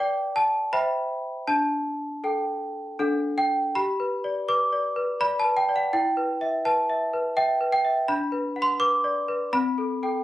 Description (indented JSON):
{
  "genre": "classical, lullaby for celesta",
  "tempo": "82 BPM",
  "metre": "3/4",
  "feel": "rubato",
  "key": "G major",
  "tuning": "A4 = 436 Hz",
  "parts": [
    { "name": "worn celesta", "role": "solo", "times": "0.0-10.2 s", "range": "C4 to D6", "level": "-22 LUFS", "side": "equal", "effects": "none" }
  ],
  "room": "moderate studio reverb, RT60 0.6 s",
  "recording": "recorded on a phone in the room, studio ambience",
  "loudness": "-22 LUFS",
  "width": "side -15 dB against mid",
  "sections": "0.0-3.8 A section; 3.8-10.2 B section",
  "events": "none",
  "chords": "0.0 G/B; 0.7 C; 1.5 Dsus4; 3.0 D; 3.8 G; 5.9 Em; 8.1 Bm/D; 9.5 Am7/C"
}